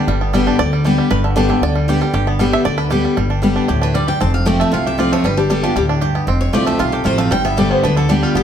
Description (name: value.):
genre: bluegrass.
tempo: 232 BPM.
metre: 4/4.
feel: straight.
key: G major, G mixolydian from 3.2 s.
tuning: A4 = 440 Hz.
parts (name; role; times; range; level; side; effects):
bluegrass banjo; melody; 0.0-8.4 s; D3 to E5; -21 LUFS; right 4 dB; plate reverb.
picked steel-string acoustic guitar; accompaniment; 0.0-8.4 s; F2 to G4; -17 LUFS; left 2 dB; none.
upright bass; bass; 0.1-8.4 s; F1 to D2; -19 LUFS; equal; none.
picked steel-string acoustic guitar; melody; 3.8-8.4 s; F4 to A5; -20 LUFS; left 1 dB; plate reverb.
room: wet studio reverb, RT60 0.7 s.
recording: heard from further back in the room.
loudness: -13 LUFS.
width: side -9 dB against mid.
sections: 0.0-3.2 A section; 3.2-8.4 B section.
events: five-string banjo solo 0.0-3.2.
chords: 0.0 G; 4.2 F; 5.2 G; 6.3 F; 7.3 G.